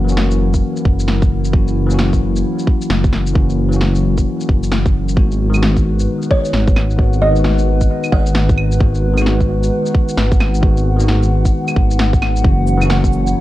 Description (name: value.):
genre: future garage.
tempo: 132 BPM.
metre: 4/4.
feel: swing 63% on 16ths.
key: G# minor.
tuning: A4 = 440 Hz.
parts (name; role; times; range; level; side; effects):
bell-like tine electric piano; accompaniment; 0.0-13.4 s; D#3 to F#4; -21 LUFS; left 3 dB; vintage 12-bit sampler grit, sidechain pumping, analog delay.
warbly tape-like pad; sustained chords; 0.0-13.4 s; F#3 to F#5; -23 LUFS; equal; chorus, built-in reverb, sidechain pumping.
dark detuned saw bass; bass; 0.0-13.3 s; F#1 to G#1; -16 LUFS; equal; sidechain pumping.
electronic shaker, snare drum, claves and cabasa; drums; 0.1-13.3 s; none; -22 LUFS; equal; vintage 12-bit sampler grit, small room ambience.
electronic kick drum; drums; 0.5-13.1 s; none; -14 LUFS; equal; vintage 12-bit sampler grit, small room ambience.
buzzing kalimba; melody; 6.3-8.8 s; C#5 to F#5; -21 LUFS; right 2 dB; analog delay.
room: little or no reverb.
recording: cassette tape.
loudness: -12 LUFS.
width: side -15 dB against mid.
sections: 0.0-12.4 A section.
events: none.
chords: 0.0 F#7; 5.2 G#m7; 12.4 F#7.